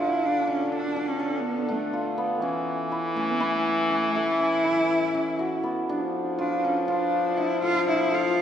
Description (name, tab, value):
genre	contemporary instrumental, chamber music in an uneven meter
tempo	243 BPM (eighths)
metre	7/8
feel	straight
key	unclear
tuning	A4 = 440 Hz
part	rich cello	melody	0.0-8.4 s	A3 to F4	-27 LUFS	right 1 dB	none
part	stopped French horn	second line	0.0-8.4 s	D3 to F3	-28 LUFS	left 2 dB	none
part	hammered dulcimer	arpeggios	0.0-8.4 s	B3 to A4	-27 LUFS	equal	none
room	wet scoring stage reverb, RT60 2.0 s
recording	heard from further back in the room, nothing above 10.5 kHz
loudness	-23 LUFS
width	side -9 dB against mid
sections	0.0-8.4 A section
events	none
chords	0.0 Dm; 2.4 A; 5.9 Dm